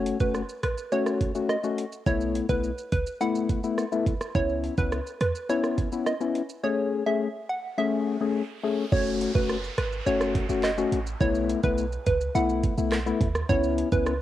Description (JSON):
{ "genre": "dancehall", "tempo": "105 BPM", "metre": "4/4", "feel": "straight", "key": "unclear", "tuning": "A4 = 440 Hz", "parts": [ { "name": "percussive organ stab", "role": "accompaniment", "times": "0.0-14.1 s", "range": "A3 to G#4", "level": "-26 LUFS", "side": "left 5 dB", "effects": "chorus, sidechain pumping" }, { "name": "clean 808-style bass", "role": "bass", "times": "0.0-5.3, 8.9-14.2 s", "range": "F#1 to E2", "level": "-30 LUFS", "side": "right 2 dB", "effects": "none" }, { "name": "island pop drum kit", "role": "drums", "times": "0.1-14.2 s", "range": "handclaps, hi-hat, kick drum, rim click, shaker", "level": "-29 LUFS", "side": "right 2 dB", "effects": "cassette tape" }, { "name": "hollow square pluck", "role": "melody", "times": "0.2-14.0 s", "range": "B4 to F#5", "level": "-30 LUFS", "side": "right 2 dB", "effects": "chorus, cassette tape" }, { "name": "riser and downlifter", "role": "sound effects", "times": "7.7-13.5 s", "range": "none", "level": "-41 LUFS", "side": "right 3 dB", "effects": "none" } ], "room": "moderate spring reverb, RT60 1.4 s, digital ambience", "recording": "home recording on cassette", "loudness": "-24 LUFS", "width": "side -13 dB against mid", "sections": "0.0-8.9 A section; 8.9-14.2 B section", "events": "riser 7.7-8.9", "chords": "0.0 F#m; 2.1 B7sus4; 4.4 C#m7; 6.6 Amaj7; 8.9 F#m; 11.2 B7sus4; 13.5 C#m7" }